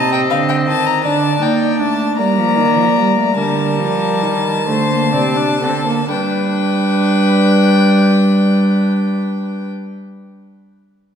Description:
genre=classical, baroque-style fugue for string quartet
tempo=39-55 BPM (dotted quarters)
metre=6/8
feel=straight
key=G minor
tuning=A4 = 439 Hz
part: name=warm violin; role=melody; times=0.0-9.7 s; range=F5 to Bb5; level=-20 LUFS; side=left 6 dB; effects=none
part: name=dark violin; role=second line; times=0.0-9.7 s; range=A4 to Eb5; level=-21 LUFS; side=left 4 dB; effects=none
part: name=warm viola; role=accompaniment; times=0.0-9.7 s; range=G3 to Eb4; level=-19 LUFS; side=right 2 dB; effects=none
part: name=dark cello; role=bass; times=0.0-9.7 s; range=C3 to Bb3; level=-16 LUFS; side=right 2 dB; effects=none
room=wet concert hall reverb, RT60 2.2 s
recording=heard from further back in the room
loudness=-12 LUFS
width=side -8 dB against mid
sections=0.0-6.1 A section; 6.1-11.2 B section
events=slowing down 0.0-6.1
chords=0.0 Adim/C; 1.0 D5; 2.2 Gm; 3.4 Gm/D; 4.7 D5; 6.1 G

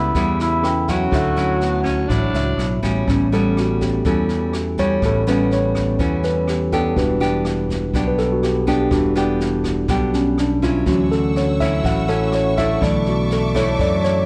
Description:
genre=bossa nova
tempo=123 BPM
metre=4/4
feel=straight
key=unclear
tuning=A4 = 439 Hz
part: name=mellow flugelhorn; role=melody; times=0.0-2.6 s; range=E4 to F#4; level=-24 LUFS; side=equal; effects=none
part: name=growling alto saxophone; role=second line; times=0.0-2.8 s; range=A3 to D4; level=-30 LUFS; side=equal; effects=none
part: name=nylon-string guitar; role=accompaniment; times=0.0-14.3 s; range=A2 to G4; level=-26 LUFS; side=equal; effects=none
part: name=tine electric piano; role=accompaniment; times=0.0-14.3 s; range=D3 to G6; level=-23 LUFS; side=equal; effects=none
part: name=fingered electric bass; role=bass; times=0.0-14.3 s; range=E1 to F#2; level=-25 LUFS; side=equal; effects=none
part: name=jazz brush drum kit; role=drums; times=0.1-14.1 s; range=kick drum, rim click, snare drum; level=-30 LUFS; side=equal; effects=none
part: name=clear studio string section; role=sustained chords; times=10.9-14.3 s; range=E5 to E6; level=-32 LUFS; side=equal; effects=none
room=moderate large studio reverb, RT60 1.1 s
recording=none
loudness=-19 LUFS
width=mono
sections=0.0-3.1 A section; 3.1-14.3 B section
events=tine electric piano solo 3.1-14.3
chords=0.0 A9/C#; 1.1 Dmaj9; 7.0 Em7; 10.9 Dmaj9; 12.8 Bm11

